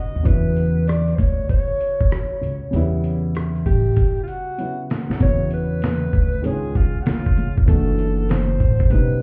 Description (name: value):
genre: hip hop, jazz-hop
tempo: 97 BPM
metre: 4/4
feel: swing 65% on 16ths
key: E dorian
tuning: A4 = 440 Hz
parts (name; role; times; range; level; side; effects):
- clear alto saxophone; melody; 0.0-9.2 s; F4 to D#5; -29 LUFS; equal; analog delay
- dark upright piano; accompaniment; 0.0-9.2 s; C#3 to F#4; -30 LUFS; equal; none
- upright bass; bass; 0.2-9.2 s; F#1 to E2; -23 LUFS; equal; none
- trip hop sampler-style drum kit; drums; 0.3-9.1 s; hi-hat, kick drum, rim click, snare drum; -21 LUFS; equal; none
room: small room ambience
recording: heard muffled through a wall, club reverb, EQ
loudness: -20 LUFS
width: mono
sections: 0.0-5.2 A section; 5.2-9.2 B section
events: drum fill 4.0-5.2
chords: 0.3 Em69; 5.2 Esus2; 6.4 C#; 7.7 F#m7b5